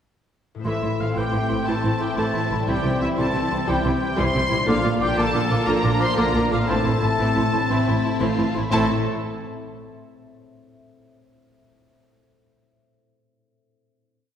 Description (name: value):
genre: cinematic, heroic adventure film score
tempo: 119 BPM (dotted quarters)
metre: 12/8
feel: straight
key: A phrygian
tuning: A4 = 440 Hz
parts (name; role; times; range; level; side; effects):
- concert harp; arpeggios; 0.5-8.9 s; A2 to E5; -32 LUFS; left 4 dB; none
- mellow concert flute; second line; 0.6-8.9 s; C6 to D6; -33 LUFS; equal; none
- warm symphonic violin section; second line; 0.6-8.9 s; C4 to F4; -33 LUFS; left 2 dB; none
- warm symphonic violin section; melody; 0.7-8.9 s; E5 to C6; -29 LUFS; left 2 dB; none
- clear clarinet; second line; 0.7-8.9 s; E4 to F4; -31 LUFS; left 1 dB; none
- warm oboe; second line; 0.7-8.9 s; A4 to C6; -31 LUFS; left 1 dB; none
- warm symphonic viola section; accompaniment; 0.7-8.9 s; D3 to C4; -28 LUFS; equal; none
- bright trombone section; sustained chords; 0.7-8.9 s; C3 to Bb3; -31 LUFS; right 2 dB; none
- mellow French horn section; sustained chords; 0.7-8.8 s; C4 to E4; -30 LUFS; left 4 dB; none
- mellow trumpet section; stabs; 0.7-8.9 s; E4 to C5; -30 LUFS; left 1 dB; none
- rich symphonic cello section; bass; 0.7-8.9 s; A2 to C3; -27 LUFS; right 2 dB; none
- rich symphonic double bass section; bass; 0.7-8.9 s; A1 to C2; -28 LUFS; right 2 dB; none
room: wet scoring stage reverb, RT60 1.9 s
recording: heard from further back in the room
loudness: -19 LUFS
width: side -9 dB against mid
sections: 0.7-8.7 theme; 8.7-10.7 final chord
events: none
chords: 0.7 Am; 2.7 C; 4.7 Bb; 6.7 Am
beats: | 0.66 1.17 1.67 2.17 | 2.68 3.18 3.68 4.18 | 4.68 5.17 5.67 6.18 | 6.69 7.20 7.71 8.22 | 8.73